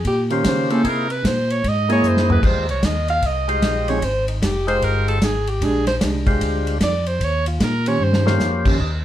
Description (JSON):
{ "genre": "soul jazz organ trio", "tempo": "151 BPM", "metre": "4/4", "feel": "swing 64% on 8ths", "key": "Eb mixolydian", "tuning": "A4 = 440 Hz", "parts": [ { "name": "mellow tonewheel organ", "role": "bass", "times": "0.0-9.0 s", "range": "F1 to Db3", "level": "-22 LUFS", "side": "equal", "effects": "chorus vibrato, slow rotary speaker" }, { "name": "warm soul drum kit", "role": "drums", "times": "0.0-8.9 s", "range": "crash cymbal, hi-hat, kick drum, ride cymbal, snare drum, toms", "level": "-23 LUFS", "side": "equal", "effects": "none" }, { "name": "edgy alto saxophone", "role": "melody", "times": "0.1-8.4 s", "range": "Eb4 to F5", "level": "-22 LUFS", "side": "right 2 dB", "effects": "none" }, { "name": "percussive tonewheel organ", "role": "melody", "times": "0.3-8.9 s", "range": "Ab3 to D#5", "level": "-23 LUFS", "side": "left 2 dB", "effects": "slow rotary speaker" }, { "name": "hollow-body jazz guitar", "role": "accompaniment", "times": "0.3-8.8 s", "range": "Eb3 to C5", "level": "-22 LUFS", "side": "right 2 dB", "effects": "none" } ], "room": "wet small room reverb, RT60 0.5 s", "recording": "heard from further back in the room", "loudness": "-17 LUFS", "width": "side -12 dB against mid", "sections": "0.0-8.8 A section", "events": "alto saxophone solo 0.0-8.8; drum fill 2.0-2.4, 8.0-8.4", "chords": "0.0 Eb13; 0.8 C7alt; 2.4 Fm7; 5.6 Bb13; 7.2 Eb13" }